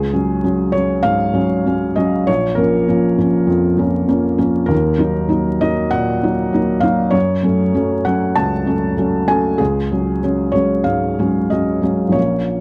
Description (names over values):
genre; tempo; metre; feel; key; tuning
neoclassical minimalist piano; 98 BPM; 4/4; rubato; unclear; A4 = 441 Hz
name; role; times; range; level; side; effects
felt-muted upright piano; solo; 0.0-12.6 s; Bb1 to A5; -17 LUFS; equal; none
room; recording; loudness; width
little or no reverb; close, detailed microphones, vinyl crackle; -17 LUFS; mono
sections
0.0-12.6 A section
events
none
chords
0.0 Dbsus4; 2.3 Bbm; 4.7 Ebm; 7.1 Gbm; 9.6 Dbsus4